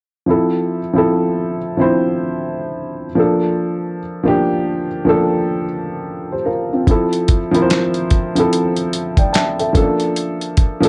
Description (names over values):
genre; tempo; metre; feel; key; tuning
lo-fi hip hop; 73 BPM; 4/4; swing 60% on 16ths; F major; A4 = 440 Hz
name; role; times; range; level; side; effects
dark upright piano; accompaniment; 0.3-10.9 s; F3 to A5; -18 LUFS; equal; low-pass filter, plate reverb
dusty soul sampler-style drum kit; drums; 6.9-10.9 s; handclaps, hi-hat, kick drum, snare drum; -18 LUFS; equal; none
room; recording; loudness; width
moderate small room ambience, RT60 0.5 s; none; -17 LUFS; mono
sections
0.3-10.9 A section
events
none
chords
0.3 Fmaj7; 3.2 Bbmaj7; 6.9 Fmaj7; 9.8 Bbmaj7